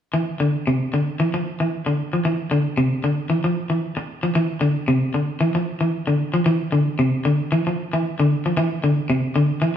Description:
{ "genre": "afrobeat", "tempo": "114 BPM", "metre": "4/4", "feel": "swing 54% on 16ths", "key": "unclear", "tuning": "A4 = 439 Hz", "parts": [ { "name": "electric guitar at the edge of break-up", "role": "arpeggios", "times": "0.1-9.7 s", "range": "C3 to F3", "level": "-19 LUFS", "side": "left 1 dB", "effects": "none" } ], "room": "wet stone room reverb, RT60 1.3 s", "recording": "band playing live in one room", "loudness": "-19 LUFS", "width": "side -9 dB against mid", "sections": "0.1-9.8 A section", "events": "none", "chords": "none" }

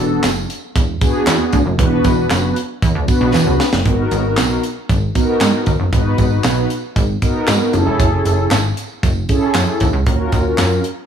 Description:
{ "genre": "early-eighties boogie funk", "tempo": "116 BPM", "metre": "4/4", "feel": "straight", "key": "G# minor", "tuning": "A4 = 439 Hz", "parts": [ { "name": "mellow synth brass", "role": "accompaniment", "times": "0.0-10.8 s", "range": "B3 to B4", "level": "-18 LUFS", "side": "equal", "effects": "chorus" }, { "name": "plucky analog bass", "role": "bass", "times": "0.0-10.8 s", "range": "E1 to G#2", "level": "-17 LUFS", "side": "right 1 dB", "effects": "none" }, { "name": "tight funk drum kit", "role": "drums", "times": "0.2-11.0 s", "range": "handclaps, hi-hat, kick drum, snare drum", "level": "-18 LUFS", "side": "right 1 dB", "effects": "none" }, { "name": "tambourine", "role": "percussion", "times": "0.2-10.7 s", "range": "none", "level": "-32 LUFS", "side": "right 5 dB", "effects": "none" } ], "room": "light reverb, small room ambience", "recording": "studio ambience", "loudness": "-13 LUFS", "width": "side -8 dB against mid", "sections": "0.0-3.9 A section; 3.9-11.1 B section", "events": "drum fill 3.3-3.9", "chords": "0.0 E7sus2; 3.9 G#m9; 7.7 F#m9; 10.1 D#m9" }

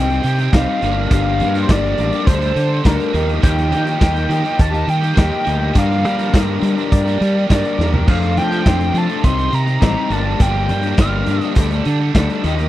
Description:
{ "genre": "indie rock", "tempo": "103 BPM", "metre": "4/4", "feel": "straight", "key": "G minor", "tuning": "A4 = 441 Hz", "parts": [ { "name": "overdriven synth lead", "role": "melody", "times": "0.0-11.5 s", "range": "Bb4 to C6", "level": "-22 LUFS", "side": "equal", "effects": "distortion, slapback echo" }, { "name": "tonewheel organ", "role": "sustained chords", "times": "0.0-12.7 s", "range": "G4 to Eb6", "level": "-33 LUFS", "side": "equal", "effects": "slow rotary speaker, overdrive" }, { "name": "electric guitar through a small old amp", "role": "riff", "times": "0.0-12.7 s", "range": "G2 to C5", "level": "-22 LUFS", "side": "left 7 dB", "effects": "none" }, { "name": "overdriven electric guitar", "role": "riff", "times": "0.0-12.7 s", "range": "F2 to A4", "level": "-24 LUFS", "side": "right 9 dB", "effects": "analog chorus, slapback echo" }, { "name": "growling fingered electric bass", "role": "bass", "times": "0.0-12.7 s", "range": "G1 to G3", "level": "-18 LUFS", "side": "equal", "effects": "overdrive" }, { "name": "raw garage drum kit", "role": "drums", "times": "0.1-12.7 s", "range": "crash cymbal, hi-hat, kick drum, snare drum, toms", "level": "-16 LUFS", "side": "equal", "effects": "none" } ], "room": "little or no reverb", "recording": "dry, close 1970s-style studio recording", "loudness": "-14 LUFS", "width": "side -14 dB against mid", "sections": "0.0-12.7 A section", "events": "drum fill 7.8", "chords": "0.0 Cm; 0.8 Gm7; 2.3 Dsus4; 3.1 Ebadd9; 5.8 Gm7; 8.1 F6; 9.2 Cm; 10.1 Gm7; 11.6 Dsus4" }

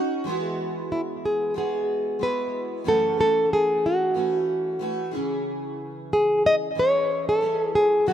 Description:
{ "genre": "pop", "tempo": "92 BPM", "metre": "4/4", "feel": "swing 55% on 16ths", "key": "E major", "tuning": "A4 = 442 Hz", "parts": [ { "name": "picked steel-string acoustic guitar", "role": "accompaniment", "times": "0.0-8.1 s", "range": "F#2 to G#4", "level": "-29 LUFS", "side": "right 1 dB", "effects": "double-tracked left and right" }, { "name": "nylon-string guitar", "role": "melody", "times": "0.9-8.1 s", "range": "E4 to D#5", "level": "-21 LUFS", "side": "equal", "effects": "tape echo" } ], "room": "wet plate reverb, RT60 3.1 s", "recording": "rough home demo mix", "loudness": "-21 LUFS", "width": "side -10 dB against mid", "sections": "0.3-8.1 A section", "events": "none", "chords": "0.3 Eadd9; 2.9 F#m7; 5.1 C#m" }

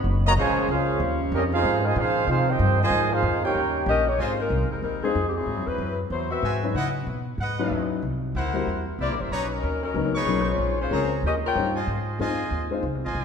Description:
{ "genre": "jazz, big band swing", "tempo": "187 BPM", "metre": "4/4", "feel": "swing 61% on 8ths", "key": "Ab major", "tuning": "A4 = 440 Hz", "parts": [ { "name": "mellow saxophone section", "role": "sustained chords", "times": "0.0-4.2 s", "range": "B2 to D#4", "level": "-33 LUFS", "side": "left 1 dB", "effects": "none" }, { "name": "upright bass", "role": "bass", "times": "0.0-13.2 s", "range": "F1 to Db3", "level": "-27 LUFS", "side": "equal", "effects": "none" }, { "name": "warm trumpet section", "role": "melody", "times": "0.3-4.0 s", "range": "Db4 to A#5", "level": "-24 LUFS", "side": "right 2 dB", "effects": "none" }, { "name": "warm trombone section", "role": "second line", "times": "0.3-4.0 s", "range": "Db3 to G4", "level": "-28 LUFS", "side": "right 3 dB", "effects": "none" }, { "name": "mellow saxophone section", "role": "melody", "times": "3.9-6.6, 9.0-11.8 s", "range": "F3 to G5", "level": "-26 LUFS", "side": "left 4 dB", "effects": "none" }, { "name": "brilliant trumpet section", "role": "stabs", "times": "4.2-4.3, 6.4-13.2 s", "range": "D#4 to C#6", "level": "-30 LUFS", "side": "equal", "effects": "none" }, { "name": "warm baby grand piano", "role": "accompaniment", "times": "5.0-12.8 s", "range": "Gb3 to C5", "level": "-29 LUFS", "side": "left 5 dB", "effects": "none" } ], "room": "wet concert hall reverb, RT60 1.9 s", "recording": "minimal, uncompressed stereo recording", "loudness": "-22 LUFS", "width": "side -6 dB against mid", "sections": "0.0-4.2 A section; 4.2-13.2 B section", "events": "none", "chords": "0.4 Bbm9; 1.0 Eb13; 1.6 Ab6; 3.6 Eb7; 4.2 Ab6; 5.5 Ab7alt; 6.8 Dbm11; 8.0 C7#11; 9.3 Bmaj9; 10.6 Bbm9; 11.2 Eb13; 11.9 Ab6" }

